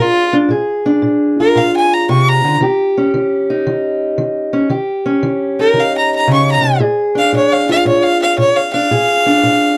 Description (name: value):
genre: acoustic country blues, solo or duo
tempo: 114 BPM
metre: 4/4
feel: swing 67% on 8ths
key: unclear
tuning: A4 = 439 Hz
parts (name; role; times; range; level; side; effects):
- rich fiddle; melody; 0.0-9.8 s; F4 to Db6; -15 LUFS; equal; none
- fingerpicked steel-string acoustic guitar; accompaniment; 0.0-9.8 s; Bb2 to Ab4; -16 LUFS; equal; none
room: little or no reverb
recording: dry, close 1970s-style studio recording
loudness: -14 LUFS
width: mono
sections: 0.0-9.8 A section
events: fiddle solo 0.0-9.8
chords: 0.0 Bb7; 2.6 Eb7; 6.8 Bb7